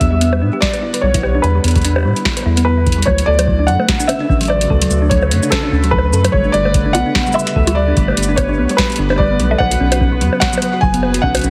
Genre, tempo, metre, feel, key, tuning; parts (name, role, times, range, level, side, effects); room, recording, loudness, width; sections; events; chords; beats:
IDM; 147 BPM; 4/4; swing 56% on 16ths; A4 = 440 Hz
felt-muted upright piano; melody; 0.0-11.5 s; A4 to G#5; -21 LUFS; equal; digital delay
warbly tape-like pad; sustained chords; 0.0-11.5 s; C#3 to B4; -27 LUFS; equal; chorus, built-in reverb, phaser
round analog bass; bass; 0.0-11.5 s; F#1 to A2; -18 LUFS; equal; tube saturation
booming analog drum machine; drums; 0.0-11.5 s; bongos, cabasa, hi-hat, snare drum; -22 LUFS; equal
electronic kick drum; drums; 0.0-11.3 s; -21 LUFS; equal
thumb-piano-like synth pluck; arpeggios; 0.1-11.5 s; F#3 to C#5; -22 LUFS; equal; chorus, digital delay
bubbling stepped-filter texture; texture; 4.0-11.5 s; B4; -32 LUFS; equal; chorus, built-in reverb
light reverb; heavily compressed radio sound; -14 LUFS; mono
0.0-3.1 A section; 3.1-11.5 B section
drum fill 2.9
0.0 Em7; 3.1 Dmaj7; 6.3 Gadd9; 9.6 Bsus2
0.21 0.62 1.03 | 1.44 1.84 2.25 2.66 | 3.07 3.48 3.88 4.29 | 4.70 5.11 5.52 5.93 | 6.33 6.74 7.15 7.56 | 7.97 8.38 8.78 9.19 | 9.60 10.01 10.42 10.82 | 11.23